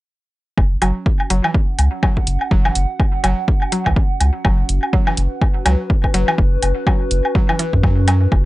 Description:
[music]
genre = minimal techno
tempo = 124 BPM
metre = 4/4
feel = swing 58% on 16ths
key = unclear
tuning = A4 = 440 Hz
[part]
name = saturated sub bass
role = bass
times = 0.6-8.5 s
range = F#1 to F#2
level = -16 LUFS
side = equal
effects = sidechain pumping
[part]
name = electronic kick drum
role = drums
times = 0.6-8.4 s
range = none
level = -16 LUFS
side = equal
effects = overdrive
[part]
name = woodblock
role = percussion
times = 0.6-8.4 s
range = none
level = -21 LUFS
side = left 1 dB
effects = tape echo
[part]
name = warbly tape-like pad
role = texture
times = 0.6-8.5 s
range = C#4 to F#5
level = -26 LUFS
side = right 1 dB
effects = chorus, built-in reverb, sidechain pumping
[part]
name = mallet-like synth pluck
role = riff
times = 0.8-8.1 s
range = E3 to F#3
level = -24 LUFS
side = equal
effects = chorus, cassette tape, sidechain pumping, analog delay
[part]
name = electronic hi-hat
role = drums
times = 0.8-8.2 s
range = none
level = -23 LUFS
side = right 1 dB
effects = overdrive
[sound]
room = little or no reverb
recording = dry, gritty hardware recording, nothing above 10.6 kHz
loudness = -14 LUFS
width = side -18 dB against mid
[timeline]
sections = 0.6-8.5 A section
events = none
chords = 0.6 F#5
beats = | 0.58 1.06 1.54 2.03 | 2.51 3.00 3.48 3.96 | 4.45 4.93 5.42 5.90 | 6.38 6.87 7.35 7.83 | 8.32

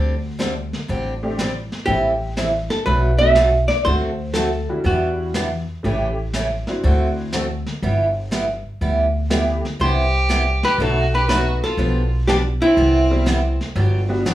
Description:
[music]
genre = country, western swing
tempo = 121 BPM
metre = 4/4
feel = swing 68% on 8ths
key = G major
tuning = A4 = 441 Hz
[part]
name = picked steel-string acoustic guitar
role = accompaniment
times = 0.0-14.3 s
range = B2 to B4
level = -23 LUFS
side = right 2 dB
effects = none
[part]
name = upright bass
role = bass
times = 0.0-14.3 s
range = G1 to E2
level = -21 LUFS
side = equal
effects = none
[part]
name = vintage brush drum kit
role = drums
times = 0.4-14.3 s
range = brushed snare drum, hi-hat, snare drum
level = -28 LUFS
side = equal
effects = none
[part]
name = honky-tonk upright piano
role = accompaniment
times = 1.2-14.3 s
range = G3 to G4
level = -25 LUFS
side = left 1 dB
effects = none
[part]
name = archtop guitar, miked and amplified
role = melody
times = 1.9-5.3, 9.8-13.6 s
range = E4 to E5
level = -19 LUFS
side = equal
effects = none
[part]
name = clear fiddle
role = second line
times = 9.8-13.6 s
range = C4 to G4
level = -24 LUFS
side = right 1 dB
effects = none
[sound]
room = moderate studio reverb, RT60 0.5 s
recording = small room ambience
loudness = -17 LUFS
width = side -14 dB against mid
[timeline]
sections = 0.0-14.3 A section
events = none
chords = 0.0 D7sus4; 1.9 Am7; 2.9 Bm7; 3.9 D7; 4.9 Em9; 5.8 A7; 6.8 D9; 7.8 G69; 9.8 Cmaj7; 10.8 B7; 11.8 G7/B; 12.8 Cmaj7; 13.8 Gmaj7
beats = 0.40 0.90 1.39 | 1.88 2.38 2.87 3.37 | 3.86 4.36 4.85 5.35 | 5.84 6.34 6.83 7.33 | 7.82 8.32 8.81 9.30 | 9.80 10.29 10.79 11.29 | 11.78 12.28 12.77 13.27 | 13.76 14.26

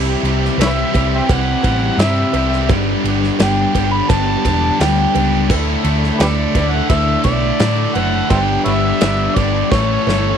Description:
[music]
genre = classic rock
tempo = 85 BPM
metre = 4/4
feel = straight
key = unclear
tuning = A4 = 441 Hz
[part]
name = tonewheel organ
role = sustained chords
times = 0.0-10.4 s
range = A3 to E5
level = -30 LUFS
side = right 1 dB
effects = none
[part]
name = cranked stack guitar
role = riff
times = 0.0-10.4 s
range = G2 to A4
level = -22 LUFS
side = left 15 dB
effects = overdrive
[part]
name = distorted electric guitar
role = riff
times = 0.0-10.4 s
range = G2 to A4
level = -23 LUFS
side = right 16 dB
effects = overdrive
[part]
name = thick fuzz guitar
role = riff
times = 0.0-10.4 s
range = G2 to D4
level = -22 LUFS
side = right 1 dB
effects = distortion
[part]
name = hollow-body short-scale fingered electric bass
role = bass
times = 0.0-10.3 s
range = E1 to A2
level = -19 LUFS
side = equal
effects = none
[part]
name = big rock drum kit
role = drums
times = 0.2-10.2 s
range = crash cymbal, kick drum, ride cymbal, snare drum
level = -21 LUFS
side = equal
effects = none
[part]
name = overdriven harmonica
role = melody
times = 0.6-10.4 s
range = G4 to B5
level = -20 LUFS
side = equal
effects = tape echo
[part]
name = cowbell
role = percussion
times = 0.6-10.2 s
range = none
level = -28 LUFS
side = right 15 dB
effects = none
[sound]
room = little or no reverb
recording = dry, close 1970s-style studio recording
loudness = -13 LUFS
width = side -8 dB against mid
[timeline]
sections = 0.0-10.4 A section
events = drum fill 9.7-10.4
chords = 0.0 C; 2.7 G; 5.5 Dsus2; 8.3 G; 9.7 A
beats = 0.59 1.29 1.99 | 2.69 3.40 4.10 4.80 | 5.50 6.21 6.91 7.61 | 8.31 9.02 9.72

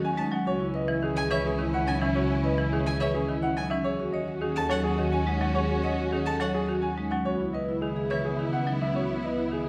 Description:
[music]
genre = classical, minimalist pattern music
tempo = 106 BPM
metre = 3/4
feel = straight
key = C# minor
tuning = A4 = 440 Hz
[part]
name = clear baby grand piano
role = melody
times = 0.0-9.7 s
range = G#4 to G#5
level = -34 LUFS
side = equal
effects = none
[part]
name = marimba with hard mallets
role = accompaniment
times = 0.0-9.7 s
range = D#3 to G#3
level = -34 LUFS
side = equal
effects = none
[part]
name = rich studio string section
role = sustained chords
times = 0.0-9.7 s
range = B3 to F#4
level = -37 LUFS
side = equal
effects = none
[part]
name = vibraphone with medium hard mallets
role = arpeggios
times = 0.0-9.7 s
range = C#4 to C#5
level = -34 LUFS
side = equal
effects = none
[part]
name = rich symphonic double bass section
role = bass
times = 0.0-9.7 s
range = C#2 to D#2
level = -34 LUFS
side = equal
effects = none
[part]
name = clear violin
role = arpeggios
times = 0.2-8.2 s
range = E5 to A5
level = -38 LUFS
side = equal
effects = none
[sound]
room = moderate scoring stage reverb, RT60 1.6 s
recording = none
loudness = -27 LUFS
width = mono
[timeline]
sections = 0.0-9.7 A section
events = none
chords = 0.5 C#m9; 3.9 D#m7b5; 7.2 C#m9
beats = | 0.46 1.02 1.59 | 2.16 2.72 3.29 | 3.85 4.42 4.99 | 5.55 6.12 6.68 | 7.25 7.82 8.38 | 8.95 9.51

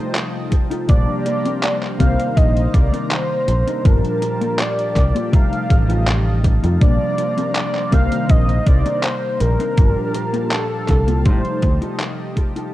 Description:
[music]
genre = vaporwave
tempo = 81 BPM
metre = 4/4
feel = straight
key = unclear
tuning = A4 = 440 Hz
[part]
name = warm velvety synth lead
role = melody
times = 0.0-12.0 s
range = A4 to F5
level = -23 LUFS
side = equal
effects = chorus, tape echo
[part]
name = warbly lo-fi synth keys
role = accompaniment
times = 0.0-12.7 s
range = Bb2 to C5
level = -24 LUFS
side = equal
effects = ensemble chorus, vintage 12-bit sampler grit
[part]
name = lush unison pad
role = sustained chords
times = 0.0-12.7 s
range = Eb3 to Bb5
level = -32 LUFS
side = equal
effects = chorus
[part]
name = mellow electric guitar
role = riff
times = 0.0-12.7 s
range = Bb3 to C5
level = -28 LUFS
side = left 2 dB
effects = ensemble chorus, vintage 12-bit sampler grit, tape echo
[part]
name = detuned 8-bit digital drum machine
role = drums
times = 0.1-12.7 s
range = handclaps, hi-hat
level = -26 LUFS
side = equal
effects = overdrive
[part]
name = electronic kick drum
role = drums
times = 0.5-12.5 s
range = none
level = -15 LUFS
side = equal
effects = overdrive
[part]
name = fingered electric bass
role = bass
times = 0.9-11.8 s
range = G1 to A2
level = -18 LUFS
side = equal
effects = none
[sound]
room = light reverb, digital ambience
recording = dark, warm production, cassette tape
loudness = -15 LUFS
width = side -15 dB against mid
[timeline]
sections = 0.0-12.7 A section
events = fade-out 10.8-12.7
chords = 0.0 F9; 0.9 Bb69; 2.0 Cm9; 3.9 Gm9; 5.3 F9/A; 6.8 Bb69; 7.9 Cm9; 9.8 Gm9; 11.3 F9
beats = 0.15 | 0.89 1.63 2.37 3.11 | 3.85 4.59 5.33 6.07 | 6.81 7.55 8.29 9.04 | 9.78 10.52 11.26 12.00 | 12.74

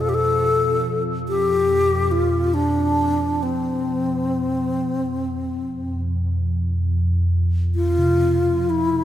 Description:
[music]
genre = world meditative, free-time meditation music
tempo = free time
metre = none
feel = none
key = F lydian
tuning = A4 = 440 Hz
[part]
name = breathy bright bass flute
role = melody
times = 0.0-9.0 s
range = C4 to A4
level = -20 LUFS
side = left 2 dB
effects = diffuse ambient delay
[part]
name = evolving wavetable pad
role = drone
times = 0.0-9.0 s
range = F2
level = -23 LUFS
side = equal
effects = phaser, built-in reverb
[part]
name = bronze singing bowl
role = texture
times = 0.0-9.0 s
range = B2 to C3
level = -30 LUFS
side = right 2 dB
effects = none
[sound]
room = moderate plate reverb, RT60 3.5 s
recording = dreamy mix soaked in reverb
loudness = -18 LUFS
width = side -11 dB against mid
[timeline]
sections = 0.0-9.0 A section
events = none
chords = none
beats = free time

